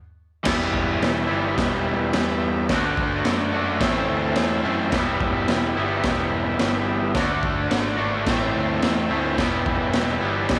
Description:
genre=garage rock duo or trio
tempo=108 BPM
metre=4/4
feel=straight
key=E minor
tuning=A4 = 440 Hz
part: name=raw garage guitar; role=riff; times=0.4-10.6 s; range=A2 to F#4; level=-25 LUFS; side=equal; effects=overdrive
part: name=combo organ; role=sustained chords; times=0.5-10.6 s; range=G4 to G5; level=-34 LUFS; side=equal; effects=none
part: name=fuzz picked electric bass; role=bass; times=0.5-10.6 s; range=E1 to F#2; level=-32 LUFS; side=equal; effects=overdrive
part: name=raw garage drum kit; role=drums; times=0.5-10.6 s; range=crash cymbal, kick drum, snare drum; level=-27 LUFS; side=equal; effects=none
room=light reverb, small room ambience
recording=none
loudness=-22 LUFS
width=mono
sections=0.5-10.6 A section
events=stop 0.0-0.5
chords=0.5 Em; 2.7 D; 3.8 Am; 4.9 Em; 7.2 D; 8.3 Am; 9.4 Em

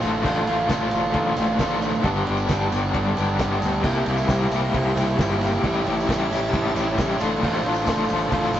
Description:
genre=indie rock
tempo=134 BPM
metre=4/4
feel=straight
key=D minor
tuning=A4 = 440 Hz
part: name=biting overdriven guitar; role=riff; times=0.0-8.6 s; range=G2 to F4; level=-24 LUFS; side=right 3 dB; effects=none
part: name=overdriven electric guitar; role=riff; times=0.0-8.6 s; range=G2 to G4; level=-24 LUFS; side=left 3 dB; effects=tremolo
part: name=growling fingered electric bass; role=bass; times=0.0-8.6 s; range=G1 to D2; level=-28 LUFS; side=equal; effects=overdrive
part: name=cloth-damped thuddy drum kit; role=drums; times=0.0-8.6 s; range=crash cymbal, kick drum, ride cymbal, snare drum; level=-28 LUFS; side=right 1 dB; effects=none
part: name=tambourine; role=percussion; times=0.0-8.6 s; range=none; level=-45 LUFS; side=left 5 dB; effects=none
part: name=phased string machine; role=sustained chords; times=3.8-8.6 s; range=F4 to Bb5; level=-34 LUFS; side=equal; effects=ensemble chorus, phaser
room=moderate stone room reverb, RT60 1.3 s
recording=rough rehearsal-room recording, tube saturation, nothing above 7.8 kHz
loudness=-20 LUFS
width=side -11 dB against mid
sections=0.0-8.6 A section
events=none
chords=0.0 Dm/A; 2.0 G; 3.8 C7; 5.6 A7; 7.2 Dm7/A

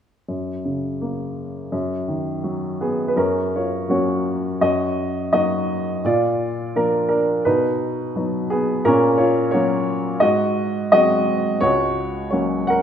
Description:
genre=classical, lyrical solo piano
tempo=85 BPM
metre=4/4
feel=rubato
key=F# major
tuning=A4 = 440 Hz
part: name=warm upright piano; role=solo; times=0.3-12.8 s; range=C#2 to F#5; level=-18 LUFS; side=equal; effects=none
room=moderate scoring stage reverb, RT60 1.8 s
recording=minimal, uncompressed stereo recording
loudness=-18 LUFS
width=side -8 dB against mid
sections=0.3-3.2 A section; 3.2-12.8 B section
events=none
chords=0.3 F#; 1.7 D#m/F#; 3.2 F#; 4.6 D#m/F#; 6.0 A#; 7.4 B; 8.8 F#/A#; 10.2 G#7; 11.6 F#/C#

